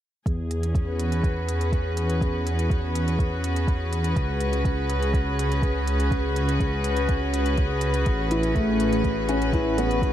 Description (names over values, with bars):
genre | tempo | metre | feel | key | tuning
piano and strings electronica | 123 BPM | 4/4 | straight | unclear | A4 = 439 Hz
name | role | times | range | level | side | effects
rich studio string section | sustained chords | 0.3-10.1 s | C#4 to B4 | -26 LUFS | left 1 dB | sidechain pumping, shimmer reverb
dark detuned saw bass | bass | 0.3-10.1 s | A1 to E2 | -26 LUFS | equal | tube saturation, sidechain pumping
electronic hi-hat | drums | 0.3-10.1 s | none | -38 LUFS | right 2 dB | none
electronic kick drum | drums | 0.3-10.1 s | none | -25 LUFS | equal | none
felt-muted upright piano | riff | 8.3-10.0 s | A3 to E4 | -24 LUFS | equal | tape echo, shimmer reverb
room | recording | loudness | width
moderate cathedral reverb, RT60 5.3 s | dreamy mix soaked in reverb | -22 LUFS | side -11 dB against mid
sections
0.3-10.1 A section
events
none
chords
0.3 Eadd9; 4.2 C#5; 8.1 Aadd9